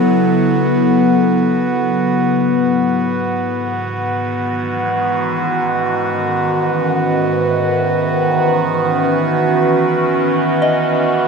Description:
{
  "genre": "ambient",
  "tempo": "free time",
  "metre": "none",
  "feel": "none",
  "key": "unclear",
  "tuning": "A4 = 438 Hz",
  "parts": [
    { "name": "evolving wavetable pad", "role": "sustained chords", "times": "0.0-11.3 s", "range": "G#2 to B4", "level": "-15 LUFS", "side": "equal", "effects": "phaser, built-in reverb" },
    { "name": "pedal harmonium", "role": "drone", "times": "0.0-11.3 s", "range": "B3 to F#4", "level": "-19 LUFS", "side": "right 2 dB", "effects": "none" },
    { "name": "soft synth bell", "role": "arpeggios", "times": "10.6-11.3 s", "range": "D#5", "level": "-17 LUFS", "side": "left 1 dB", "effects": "chorus, phaser" }
  ],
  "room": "wet cathedral reverb, RT60 6.0 s",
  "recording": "none",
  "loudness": "-14 LUFS",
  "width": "side -5 dB against mid",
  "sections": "0.0-11.3 A section",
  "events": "filter sweep on ambient pad 0.0-11.3",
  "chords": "0.0 F#m; 2.3 Emaj7/G#; 10.1 B"
}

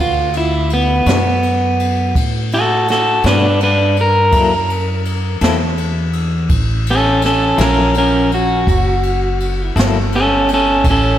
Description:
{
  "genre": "slow blues",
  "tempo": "55 BPM (dotted quarters)",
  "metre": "12/8",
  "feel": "straight",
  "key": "B minor",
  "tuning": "A4 = 440 Hz",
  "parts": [
    { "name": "electric guitar at the edge of break-up", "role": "melody", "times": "0.0-11.2 s", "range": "B3 to B4", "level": "-14 LUFS", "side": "equal", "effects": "spring reverb" },
    { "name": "upright bass", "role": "bass", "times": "0.0-11.2 s", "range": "F#1 to A2", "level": "-18 LUFS", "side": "equal", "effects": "none" },
    { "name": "jazz brush drum kit", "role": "drums", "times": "0.3-11.0 s", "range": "kick drum, ride cymbal, snare drum", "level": "-21 LUFS", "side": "equal", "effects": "none" },
    { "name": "semi-hollow electric guitar", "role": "accompaniment", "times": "1.1-10.0 s", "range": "B2 to A4", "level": "-23 LUFS", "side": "left 5 dB", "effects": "tremolo" }
  ],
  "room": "moderate lush hall reverb, RT60 2.1 s",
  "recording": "big arena sound",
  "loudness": "-12 LUFS",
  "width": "side -11 dB against mid",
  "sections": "0.0-11.2 A section",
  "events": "clean electric guitar solo 0.0-11.2",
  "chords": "0.0 Bm7; 4.3 F#7#9"
}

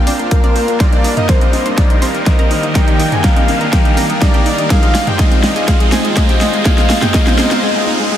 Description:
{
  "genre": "progressive house",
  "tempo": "123 BPM",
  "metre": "4/4",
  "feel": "straight",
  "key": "unclear",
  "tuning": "A4 = 441 Hz",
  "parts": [
    { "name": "soft octave-layered synth lead", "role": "melody", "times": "0.0-7.6 s", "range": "Bb4 to Ab5", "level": "-20 LUFS", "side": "left 2 dB", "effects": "chorus, cassette tape, sidechain pumping, tape echo" },
    { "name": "rich chamber violin section", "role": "second line", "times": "0.0-7.6 s", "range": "Bb4 to Ab5", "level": "-26 LUFS", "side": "left 1 dB", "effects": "none" },
    { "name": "shimmering ambient pad", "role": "sustained chords", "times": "0.0-7.6 s", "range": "Eb3 to F5", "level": "-23 LUFS", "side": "equal", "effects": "chorus, built-in reverb, sidechain pumping" },
    { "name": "analog pluck", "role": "arpeggios", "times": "0.0-8.2 s", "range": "Ab3 to D5", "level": "-22 LUFS", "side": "equal", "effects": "chorus, cassette tape, sidechain pumping, tape echo" },
    { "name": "soft supersaw", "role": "stabs", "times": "0.0-7.6 s", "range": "G3 to C5", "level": "-21 LUFS", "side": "right 1 dB", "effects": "sidechain pumping, tape echo" },
    { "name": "round analog bass", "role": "bass", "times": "0.0-7.6 s", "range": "none", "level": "barely audible", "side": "none", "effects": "none" },
    { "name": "riser", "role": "sound effects", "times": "0.0-8.2 s", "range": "none", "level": "-23 LUFS", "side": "equal", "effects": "none" },
    { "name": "big-room dance drum kit", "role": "drums", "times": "0.1-7.6 s", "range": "hi-hat, snare drum", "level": "-19 LUFS", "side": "equal", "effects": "overdrive, studio reverb" },
    { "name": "electronic congas and toms", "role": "percussion", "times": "0.1-7.5 s", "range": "none", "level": "-25 LUFS", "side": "right 2 dB", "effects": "overdrive, sidechain pumping on toms, studio reverb, sidechain pumping on perc" },
    { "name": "electronic kick drum", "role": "drums", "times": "0.3-7.2 s", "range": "none", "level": "-12 LUFS", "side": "equal", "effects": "overdrive, studio reverb" }
  ],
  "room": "wet huge ambient reverb, RT60 6.9 s",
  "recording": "dreamy mix soaked in reverb",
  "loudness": "-10 LUFS",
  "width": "side -10 dB against mid",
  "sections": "0.0-8.2 A section",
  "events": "build-up 0.0-8.2; riser 0.0-8.2; drum fill 0.8-7.6; break 7.6-8.2",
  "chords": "0.0 Bb; 0.8 Ebmaj7; 4.7 Ab6"
}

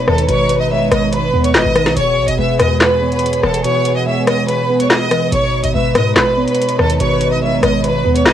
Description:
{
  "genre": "hip hop, drill",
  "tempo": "143 BPM",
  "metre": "4/4",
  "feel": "half-time",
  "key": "G# phrygian",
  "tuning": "A4 = 444 Hz",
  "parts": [
    { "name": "clear studio violin section", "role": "melody", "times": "0.0-8.3 s", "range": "A4 to E6", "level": "-18 LUFS", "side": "equal", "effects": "cassette tape" },
    { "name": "breathy flute-like synth lead", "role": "second line", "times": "0.0-8.3 s", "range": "B4 to C#5", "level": "-21 LUFS", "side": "left 11 dB", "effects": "chorus, analog delay" },
    { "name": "mellow tine electric piano", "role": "accompaniment", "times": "0.0-8.3 s", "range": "B2 to B4", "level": "-17 LUFS", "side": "right 5 dB", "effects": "phaser" },
    { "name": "warm studio string section", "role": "sustained chords", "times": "0.0-8.3 s", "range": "E3 to B4", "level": "-27 LUFS", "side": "left 2 dB", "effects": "none" },
    { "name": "short 808-style bass", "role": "bass", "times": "0.1-8.3 s", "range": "E1 to G#2", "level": "-21 LUFS", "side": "left 1 dB", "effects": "none" },
    { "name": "drill drum kit", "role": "drums", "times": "0.1-8.3 s", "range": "handclaps, hi-hat, rim click, snare drum", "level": "-15 LUFS", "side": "left 2 dB", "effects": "overdrive, cassette tape" }
  ],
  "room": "moderate small room reverb, RT60 0.5 s",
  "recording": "home recording on cassette",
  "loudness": "-12 LUFS",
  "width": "side -10 dB against mid",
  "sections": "0.0-8.3 A section",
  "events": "kick muted 3.6-5.3",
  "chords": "0.0 G#m; 2.0 E; 5.3 G#m"
}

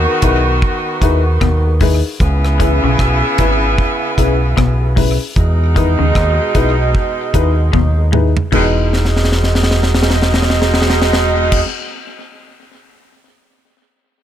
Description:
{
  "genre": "roots reggae",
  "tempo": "76 BPM",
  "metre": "4/4",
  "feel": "swing 59% on 16ths",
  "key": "E major",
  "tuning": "A4 = 440 Hz",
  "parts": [
    { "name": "warm horn section", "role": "second line", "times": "0.0-11.6 s", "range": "B2 to F#4", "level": "-17 LUFS", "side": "right 2 dB", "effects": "tape echo" },
    { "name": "deep dub fingered electric bass", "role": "bass", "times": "0.0-11.6 s", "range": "E1 to E2", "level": "-15 LUFS", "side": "equal", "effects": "none" },
    { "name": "dark upright piano", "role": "stabs", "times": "0.1-11.6 s", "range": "E3 to B4", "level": "-21 LUFS", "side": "left 6 dB", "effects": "none" },
    { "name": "deep reggae drum kit", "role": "drums", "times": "0.2-13.1 s", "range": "crash cymbal, hi-hat, kick drum, rim click, snare drum, toms", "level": "-17 LUFS", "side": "equal", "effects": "tape echo" },
    { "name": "clean electric guitar", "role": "arpeggios", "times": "1.4-10.4 s", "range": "G#2 to E3", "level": "-21 LUFS", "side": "left 7 dB", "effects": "none" }
  ],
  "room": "light reverb",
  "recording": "none",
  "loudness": "-11 LUFS",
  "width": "side -10 dB against mid",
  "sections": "0.0-8.5 A section; 8.5-11.7 B section",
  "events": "drum fill 7.7-8.5, 8.9-11.5",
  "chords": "0.0 Emaj7; 2.2 C#m7; 5.4 Emaj7"
}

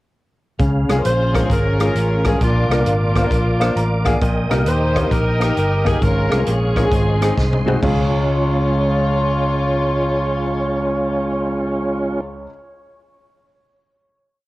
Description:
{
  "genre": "uptempo gospel",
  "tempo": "133 BPM",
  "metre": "4/4",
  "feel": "swing 65% on 8ths",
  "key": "Db major",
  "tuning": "A4 = 440 Hz",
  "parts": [
    { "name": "clear concert grand piano", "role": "accompaniment", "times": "0.6-12.5 s", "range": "Db2 to D6", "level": "-23 LUFS", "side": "left 1 dB", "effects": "cassette tape" },
    { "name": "tonewheel organ", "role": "sustained chords", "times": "0.6-12.2 s", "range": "Ab3 to Eb6", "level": "-23 LUFS", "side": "right 1 dB", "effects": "chorus vibrato, stopped rotary speaker, cassette tape" },
    { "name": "fingered electric bass", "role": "bass", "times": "0.6-12.5 s", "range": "G1 to Eb2", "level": "-20 LUFS", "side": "equal", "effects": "none" },
    { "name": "swinging big-band drum kit", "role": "drums", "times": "0.6-8.0 s", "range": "crash cymbal, hi-hat, kick drum, rim click, snare drum, toms", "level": "-22 LUFS", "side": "equal", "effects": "none" },
    { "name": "warm studio string section", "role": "melody", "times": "1.0-12.2 s", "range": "Bb3 to C5", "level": "-26 LUFS", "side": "left 2 dB", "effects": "cassette tape" },
    { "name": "breathy alto saxophone", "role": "melody", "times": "1.1-12.2 s", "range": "F4 to Db5", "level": "-24 LUFS", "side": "right 1 dB", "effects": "cassette tape, analog delay" }
  ],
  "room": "small room ambience",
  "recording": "home recording on cassette",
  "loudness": "-15 LUFS",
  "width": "side -18 dB against mid",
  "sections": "0.6-7.8 breakdown; 7.8-11.4 final chord",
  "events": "grand piano fill 3.3-4.2; drum fill 7.4-7.8",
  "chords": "0.6 Db; 2.4 Bb; 4.2 Eb/Bb; 6.0 Db/Ab; 6.9 Ab; 7.8 Db"
}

